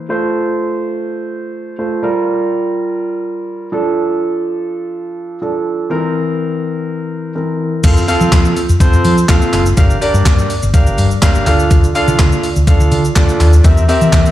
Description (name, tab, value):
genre	dance-pop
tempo	124 BPM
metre	4/4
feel	straight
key	F major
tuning	A4 = 436 Hz
part	dark baby grand piano	accompaniment	0.0-14.3 s	E3 to F5	-16 LUFS	right 1 dB	sidechain pumping, low-pass filter
part	hollow-body short-scale fingered electric bass	bass	7.8-14.3 s	Gb1 to F3	-12 LUFS	equal	sidechain pumping
part	gated 80s digital drum machine	drums	7.8-14.3 s	crash cymbal, handclaps, hi-hat, kick drum, shaker, snare drum	-12 LUFS	equal	gated reverb, gated reverb snare
room	moderate digital room reverb, RT60 1.2 s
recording	played on a big sound system in a bare room, large studio reverb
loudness	-11 LUFS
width	side -13 dB against mid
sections	0.0-7.8 A section; 7.8-14.3 B section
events	drop 7.8-14.3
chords	0.1 F; 2.0 Gm7; 3.7 Dm; 5.9 C7/E; 7.8 F; 9.8 Gm7; 11.5 Dm; 13.6 C7/E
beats	| 0.10 0.58 1.06 1.55 | 2.03 2.52 3.00 3.48 | 3.97 4.45 4.93 5.42 | 5.90 6.39 6.87 7.35 | 7.84 8.32 8.80 9.29 | 9.77 10.26 10.74 11.22 | 11.71 12.19 12.68 13.16 | 13.64 14.13